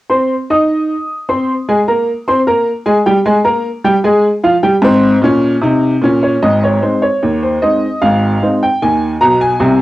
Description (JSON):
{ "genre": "ragtime piano", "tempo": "76 BPM", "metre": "2/4", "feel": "straight", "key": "Ab major", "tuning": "A4 = 440 Hz", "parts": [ { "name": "clear upright piano", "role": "solo", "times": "0.1-9.8 s", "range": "Ab1 to Eb6", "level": "-10 LUFS", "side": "equal", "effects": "cassette tape" } ], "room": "moderate studio reverb, RT60 0.6 s", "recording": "home recording on cassette", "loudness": "-10 LUFS", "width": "side -16 dB against mid", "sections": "0.1-6.4 A section; 6.4-9.8 B section", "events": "none", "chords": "0.1 Ab; 3.3 Db5; 6.4 Ab" }